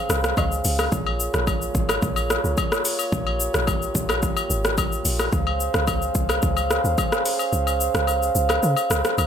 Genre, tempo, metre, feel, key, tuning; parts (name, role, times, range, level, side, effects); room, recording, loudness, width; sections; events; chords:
amapiano; 109 BPM; 4/4; straight; Bb dorian; A4 = 440 Hz
dark brass ensemble; sustained chords; 0.0-9.3 s; Bb3 to F5; -26 LUFS; right 2 dB; sidechain pumping
deep log drum bass; bass; 0.1-9.3 s; Ab1 to Db3; -25 LUFS; equal
deep house drum kit; drums; 0.1-9.3 s; hi-hat, kick drum, rim click, shaker; -23 LUFS; equal; overdrive
agogo bells and woodblock; percussion; 0.4-9.3 s; -29 LUFS; left 7 dB
light reverb; -20 LUFS; side -8 dB against mid
0.0-9.3 A section
kick muted 7.5-9.3
0.0 Dbmaj7; 0.9 Bbm7; 5.3 Dbmaj7